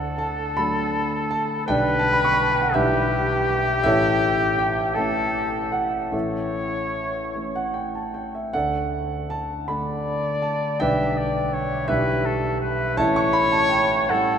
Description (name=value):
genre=classical, romantic duo for trumpet and grand piano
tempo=49-57 BPM (dotted quarters)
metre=6/8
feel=rubato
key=unclear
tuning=A4 = 438 Hz
part: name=warm trumpet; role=melody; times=0.0-14.4 s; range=G4 to E5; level=-24 LUFS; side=left 2 dB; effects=none
part: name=dark concert grand piano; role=accompaniment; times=0.0-14.4 s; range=A1 to C#6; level=-22 LUFS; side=right 1 dB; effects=none
room=wet cathedral reverb, RT60 5.3 s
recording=in a vast, echoing space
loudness=-20 LUFS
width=side -8 dB against mid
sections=0.0-14.4 A section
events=none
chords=0.0 D; 1.7 G/B; 2.7 Em7/B; 3.8 A; 8.5 D; 10.8 G/B; 11.9 Em7/B; 13.0 A